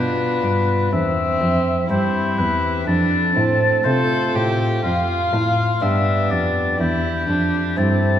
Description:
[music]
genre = classical, baroque-style sonata movement with continuo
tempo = 61 BPM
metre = 4/4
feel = straight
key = C major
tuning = A4 = 439 Hz
[part]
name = warm oboe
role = melody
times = 0.0-8.2 s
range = G4 to F5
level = -22 LUFS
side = left 4 dB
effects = none
[part]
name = warm violin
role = second line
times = 0.0-8.2 s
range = C4 to A4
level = -23 LUFS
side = right 3 dB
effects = none
[part]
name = pipe organ, principal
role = accompaniment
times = 0.0-8.2 s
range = E2 to G4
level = -23 LUFS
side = left 1 dB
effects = none
[part]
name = warm cello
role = bass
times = 0.0-8.2 s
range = E2 to C3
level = -22 LUFS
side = equal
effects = none
[sound]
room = wet concert hall reverb, RT60 2.2 s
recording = none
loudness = -17 LUFS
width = side -10 dB against mid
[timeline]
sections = 0.0-8.2 A section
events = none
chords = 0.0 G7; 0.9 C/E; 2.9 F; 4.8 G7/F; 6.8 C/E

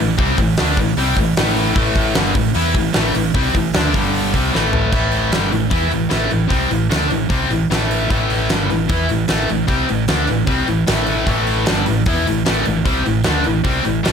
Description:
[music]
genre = hard rock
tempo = 152 BPM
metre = 4/4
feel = straight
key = A minor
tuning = A4 = 437 Hz
[part]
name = overdriven electric guitar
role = riff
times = 0.0-14.1 s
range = G2 to E4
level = -20 LUFS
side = left 14 dB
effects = none
[part]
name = scooped high-gain guitar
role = riff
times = 0.0-14.1 s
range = G2 to E4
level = -20 LUFS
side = right 10 dB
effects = distortion
[part]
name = fingered electric bass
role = bass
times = 0.0-14.1 s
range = G1 to E2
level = -22 LUFS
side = equal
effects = none
[part]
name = huge arena drum kit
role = drums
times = 0.2-14.1 s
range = crash cymbal, hi-hat, kick drum, snare drum, toms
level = -20 LUFS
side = equal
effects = none
[sound]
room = light reverb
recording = none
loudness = -14 LUFS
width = side -7 dB against mid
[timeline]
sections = 0.0-4.9 A section; 4.9-14.1 B section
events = drum fill 4.5-4.9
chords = 0.0 Am; 3.9 G5; 4.3 Am

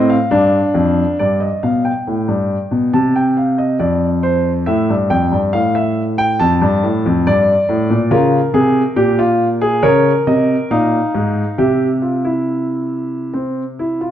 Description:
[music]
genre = classical, baroque-style 3-part fugue for grand piano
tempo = 69 BPM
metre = 4/4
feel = straight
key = unclear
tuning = A4 = 439 Hz
[part]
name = warm concert grand piano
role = solo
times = 0.0-14.1 s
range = F2 to A5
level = -13 LUFS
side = equal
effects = none
[sound]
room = moderate recital hall reverb, RT60 1.6 s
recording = dark, warm production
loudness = -13 LUFS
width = side -10 dB against mid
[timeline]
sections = 0.0-1.2 A section; 1.2-14.1 B section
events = none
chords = 0.0 F; 1.2 G; 2.9 Cm; 4.7 A5; 6.4 Dm/F; 8.1 Bbm; 11.6 C

